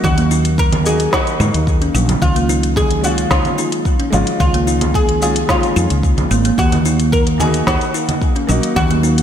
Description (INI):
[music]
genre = organic downtempo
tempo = 110 BPM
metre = 4/4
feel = straight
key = Eb minor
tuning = A4 = 445 Hz
[part]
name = oud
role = melody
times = 0.0-9.2 s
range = F4 to Bb4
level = -21 LUFS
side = left 2 dB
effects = ping-pong delay
[part]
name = felt-muted upright piano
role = accompaniment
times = 0.0-9.2 s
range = Ab3 to Gb4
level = -23 LUFS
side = equal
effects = sidechain pumping, digital delay
[part]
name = kalimba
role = arpeggios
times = 0.0-9.2 s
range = Eb3 to Eb4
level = -19 LUFS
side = right 2 dB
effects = digital delay
[part]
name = woody fretless electric bass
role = bass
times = 0.0-9.2 s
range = Ab1 to Ab2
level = -17 LUFS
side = equal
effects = sidechain pumping
[part]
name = electronic kick drum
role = drums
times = 0.0-8.9 s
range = none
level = -18 LUFS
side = equal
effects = none
[part]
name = organic electronic drum kit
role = drums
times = 0.0-9.2 s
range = congas, hi-hat, shaker, snare drum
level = -21 LUFS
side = right 1 dB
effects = gated reverb
[sound]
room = moderate lush hall reverb, RT60 2.2 s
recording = bright 1980s-style digital production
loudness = -13 LUFS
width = side -9 dB against mid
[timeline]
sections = 0.0-9.2 A section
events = none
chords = 0.0 Ebm; 2.2 Db; 6.6 Ebm